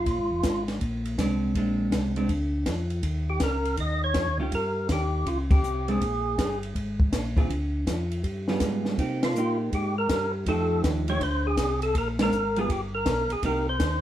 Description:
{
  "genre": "soul jazz organ trio",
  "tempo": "162 BPM",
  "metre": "4/4",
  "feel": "swing 65% on 8ths",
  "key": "Bb mixolydian",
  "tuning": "A4 = 435 Hz",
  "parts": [
    { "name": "percussive tonewheel organ", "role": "melody", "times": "0.0-0.6, 3.3-6.6, 9.2-14.0 s", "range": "F4 to Eb5", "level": "-28 LUFS", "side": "equal", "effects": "slow rotary speaker, overdrive, plate reverb" },
    { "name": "tonewheel organ", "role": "bass", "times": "0.0-14.0 s", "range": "F1 to C3", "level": "-29 LUFS", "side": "equal", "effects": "chorus vibrato, slow rotary speaker" },
    { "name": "compact cocktail drum kit", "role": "drums", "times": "0.1-13.9 s", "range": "hi-hat, kick drum, ride cymbal, snare drum", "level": "-27 LUFS", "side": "equal", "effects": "none" },
    { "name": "vintage hollow-body jazz guitar", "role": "accompaniment", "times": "1.2-13.7 s", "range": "D3 to Ab4", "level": "-28 LUFS", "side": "right 2 dB", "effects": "none" }
  ],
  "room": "wet studio reverb, RT60 0.6 s",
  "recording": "heard from further back in the room",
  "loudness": "-24 LUFS",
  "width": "side -12 dB against mid",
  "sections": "0.0-14.0 A section",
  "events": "band accent 5.5, 9.2, 12.1",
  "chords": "0.1 Bb9; 3.0 Eb7; 6.0 Bb7(no3); 7.5 Dm; 8.2 G7b9; 9.0 Cm7; 10.5 F9; 11.9 Bb9; 12.7 G; 13.4 Cm7"
}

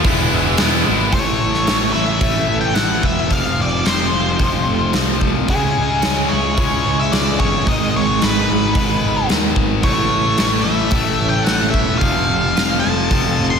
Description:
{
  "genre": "quiet-loud alternative rock",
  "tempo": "110 BPM",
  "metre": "4/4",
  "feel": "straight",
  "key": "unclear",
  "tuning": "A4 = 441 Hz",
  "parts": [
    { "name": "percussive tonewheel organ", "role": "sustained chords", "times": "0.0-1.1 s", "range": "G#4 to B5", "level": "-32 LUFS", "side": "right 1 dB", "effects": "none" },
    { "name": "tight distorted guitar", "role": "riff", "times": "0.0-13.6 s", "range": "F2 to E4", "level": "-21 LUFS", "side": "left 8 dB", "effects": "distortion" },
    { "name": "tight distorted guitar", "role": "riff", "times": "0.0-1.1 s", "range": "E3 to E4", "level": "-21 LUFS", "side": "right 11 dB", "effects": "distortion, slapback echo" },
    { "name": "fuzz picked electric bass", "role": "bass", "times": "0.0-13.6 s", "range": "E1 to D#2", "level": "-22 LUFS", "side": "equal", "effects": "overdrive" },
    { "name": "huge arena drum kit", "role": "drums", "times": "0.0-13.2 s", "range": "hi-hat, kick drum, snare drum", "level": "-19 LUFS", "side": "equal", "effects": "none" },
    { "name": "octave-fuzz lead guitar", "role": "melody", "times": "1.1-13.6 s", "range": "G#4 to C6", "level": "-20 LUFS", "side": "equal", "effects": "distortion, analog delay" },
    { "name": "twelve-string electric guitar", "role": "arpeggios", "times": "1.1-13.6 s", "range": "F2 to A4", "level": "-24 LUFS", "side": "right 9 dB", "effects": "tremolo, analog delay" }
  ],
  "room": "moderate lush hall reverb, RT60 1.6 s, small room ambience",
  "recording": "big arena sound",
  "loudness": "-14 LUFS",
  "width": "side -6 dB against mid",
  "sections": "0.0-1.1 A section; 1.1-13.6 B section",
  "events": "none",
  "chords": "0.0 E7; 1.1 A; 3.3 F; 5.5 C#m; 7.7 G#m; 9.8 A; 12.0 F"
}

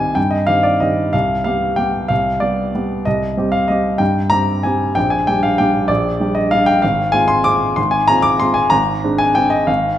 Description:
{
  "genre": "classical, piano waltz",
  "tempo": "189 BPM",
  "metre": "3/4",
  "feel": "uneven beats, rubato",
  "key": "C minor",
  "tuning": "A4 = 440 Hz",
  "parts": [
    { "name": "warm grand piano", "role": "solo", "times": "0.0-10.0 s", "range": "Ab1 to D6", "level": "-14 LUFS", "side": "equal", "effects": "none" }
  ],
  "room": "wet recital hall reverb, RT60 1.6 s",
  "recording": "minimal, uncompressed stereo recording",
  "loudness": "-14 LUFS",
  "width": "side -11 dB against mid",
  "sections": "0.0-10.0 A section",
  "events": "none",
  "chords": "0.0 Cm; 1.1 G7/C; 3.1 Cm; 5.0 Gm/Bb; 6.8 Fm/Ab; 8.7 Dm7b5/Ab"
}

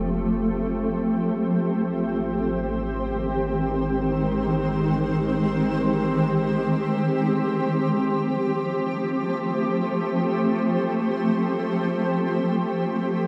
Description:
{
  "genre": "ambient",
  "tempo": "free time",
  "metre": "none",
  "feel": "none",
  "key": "unclear",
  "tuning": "A4 = 444 Hz",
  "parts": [
    { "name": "shimmering ambient pad", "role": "sustained chords", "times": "0.0-13.3 s", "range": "Eb3 to C5", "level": "-24 LUFS", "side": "equal", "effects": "chorus, built-in reverb" },
    { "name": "round analog bass", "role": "bass", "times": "0.0-7.3 s", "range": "F1 to Ab1", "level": "-38 LUFS", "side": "equal", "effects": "none" }
  ],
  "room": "wet huge ambient reverb, RT60 7.5 s",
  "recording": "none",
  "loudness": "-24 LUFS",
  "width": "mono",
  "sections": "0.0-7.3 A section; 7.3-13.3 B section",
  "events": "fade-out on analog synth bass 0.0-7.3; filter sweep on ambient pad 0.0-7.3",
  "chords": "0.0 Fadd9; 1.6 Abmaj7; 7.3 Fadd9"
}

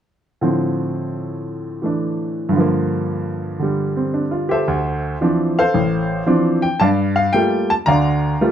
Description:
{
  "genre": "solo jazz",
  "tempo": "112 BPM",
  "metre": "4/4",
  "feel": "swing 68% on 8ths",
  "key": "D minor",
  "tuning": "A4 = 440 Hz",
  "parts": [
    { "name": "clear baby grand piano", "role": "solo", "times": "0.4-8.5 s", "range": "A1 to Bb5", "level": "-16 LUFS", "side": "equal", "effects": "none" }
  ],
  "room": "moderate club reverb, RT60 0.8 s",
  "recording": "dark, warm production",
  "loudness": "-16 LUFS",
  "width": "side -9 dB against mid",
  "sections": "0.4-4.7 A section; 4.7-8.5 B section",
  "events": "none",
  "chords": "0.4 Dm7/A; 2.5 Gm7; 4.7 Dm9; 6.8 Gm9"
}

